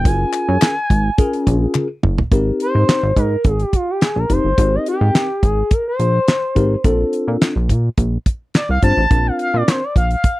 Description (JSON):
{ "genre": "early-eighties boogie funk", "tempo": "106 BPM", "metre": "4/4", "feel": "straight", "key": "Ab major", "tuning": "A4 = 443 Hz", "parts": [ { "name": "expressive synth lead", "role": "melody", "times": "0.0-10.4 s", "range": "F4 to A5", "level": "-20 LUFS", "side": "equal", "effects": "chorus, slapback echo" }, { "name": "mellow tine electric piano", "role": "accompaniment", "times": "0.0-9.8 s", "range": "C4 to C5", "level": "-20 LUFS", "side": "left 2 dB", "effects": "phaser" }, { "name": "chorused synth bass", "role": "bass", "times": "0.0-10.2 s", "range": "F1 to Bb2", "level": "-17 LUFS", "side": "equal", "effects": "none" }, { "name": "damped 70s drum kit", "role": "drums", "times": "0.1-10.4 s", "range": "handclaps, hi-hat, kick drum, snare drum, toms", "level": "-16 LUFS", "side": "equal", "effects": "none" }, { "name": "group handclap", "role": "percussion", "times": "0.3-1.9 s", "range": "none", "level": "-25 LUFS", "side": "left 11 dB", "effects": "none" } ], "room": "little or no reverb", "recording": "dry, close 1970s-style studio recording", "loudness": "-14 LUFS", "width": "side -18 dB against mid", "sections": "0.0-2.3 A section; 2.3-10.4 B section", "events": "drum fill 1.8-2.3; analog synth lead solo 2.3-10.4", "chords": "0.1 Gbmaj9; 2.3 Abmaj9; 6.8 Bbmaj9" }